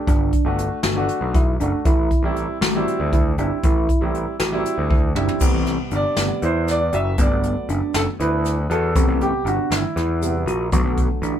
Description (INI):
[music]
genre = progressive instrumental, band music in an uneven meter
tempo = 237 BPM (eighths)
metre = 7/8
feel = straight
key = A dorian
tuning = A4 = 440 Hz
[part]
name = warm grand piano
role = accompaniment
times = 0.0-11.4 s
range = C3 to E5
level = -24 LUFS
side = right 1 dB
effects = none
[part]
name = bell-like tine electric piano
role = arpeggios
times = 0.1-11.4 s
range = B3 to F#4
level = -25 LUFS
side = right 1 dB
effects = phaser
[part]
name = overdriven picked electric bass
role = bass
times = 0.1-11.3 s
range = F#1 to E2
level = -24 LUFS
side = equal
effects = none
[part]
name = jazz brush drum kit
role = drums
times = 0.1-11.3 s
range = crash cymbal, hi-hat, kick drum, snare drum, toms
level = -21 LUFS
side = equal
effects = none
[part]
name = tube shaker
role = percussion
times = 5.4-11.4 s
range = none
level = -38 LUFS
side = right 5 dB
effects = none
[sound]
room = light reverb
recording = band playing live in one room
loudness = -18 LUFS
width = side -10 dB against mid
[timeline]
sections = 0.0-5.4 A section; 5.4-11.4 B section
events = drum fill 4.9-5.4; grand piano solo 5.4-11.4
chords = 0.1 Gmaj7; 1.9 Am7; 3.6 Am; 5.4 Am7; 7.2 Gmaj7; 9.0 Am7; 10.7 Bm7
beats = | 0.08 0.33 0.58 0.84 1.09 1.35 1.60 | 1.86 2.11 2.37 2.62 2.87 3.13 3.38 | 3.63 3.89 4.14 4.40 4.65 4.90 5.16 | 5.41 5.67 5.92 6.17 6.42 6.68 6.93 | 7.19 7.44 7.69 7.95 8.20 8.45 8.70 | 8.96 9.21 9.46 9.72 9.97 10.22 10.47 | 10.73 10.98 11.23